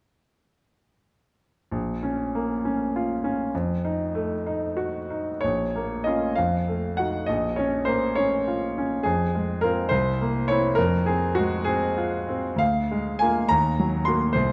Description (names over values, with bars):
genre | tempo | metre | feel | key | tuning
classical, romantic character piece for solo piano | 59-72 BPM (dotted quarters) | 6/8 | rubato | Bb minor | A4 = 439 Hz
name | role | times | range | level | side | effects
clear grand piano | solo | 1.7-14.5 s | Bb1 to C6 | -25 LUFS | equal | none
room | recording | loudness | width
moderate concert hall reverb, RT60 2.0 s | none | -25 LUFS | mono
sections
1.7-5.4 A section; 5.4-14.5 B section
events
none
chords
1.7 Bbm; 3.5 F7b9; 5.4 Bbm; 6.4 F7b9; 7.3 Bbm; 9.0 Fm; 9.9 C7; 10.8 Fm; 12.6 Bb7/D; 13.5 Ebm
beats
| 1.71 2.63 | 3.52 4.44 | 5.42 6.36 | 7.27 8.16 | 9.05 9.91 | 10.77 11.66 | 12.60 13.49 | 14.34